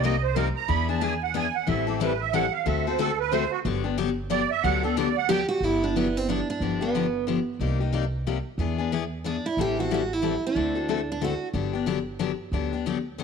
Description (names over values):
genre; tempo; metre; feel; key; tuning
acoustic string swing (jazz manouche); 183 BPM; 3/4; swing 61% on 8ths; G major; A4 = 436 Hz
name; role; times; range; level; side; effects
musette accordion; second line; 0.0-5.4 s; F#4 to B5; -26 LUFS; right 14 dB; none
picked steel-string acoustic guitar; accompaniment; 0.0-13.2 s; C3 to A4; -27 LUFS; left 9 dB; none
upright bass; bass; 0.0-13.2 s; G1 to E2; -30 LUFS; right 1 dB; none
picked steel-string acoustic guitar; melody; 5.3-7.2, 9.3-11.5 s; B3 to G4; -26 LUFS; right 4 dB; none
room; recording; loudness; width
light reverb, studio reverb; 1960s-style stereo with parts hard left and right; -23 LUFS; side -6 dB against mid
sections
0.0-5.6 A section; 5.6-13.2 B section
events
accordion solo 0.0-5.6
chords
0.0 Cm7; 0.7 E7; 1.7 Am7; 2.7 D7; 3.6 Gmaj7; 6.6 G7; 7.6 Cm7; 8.6 E7; 9.6 Am7; 10.6 D7; 11.5 Gmaj7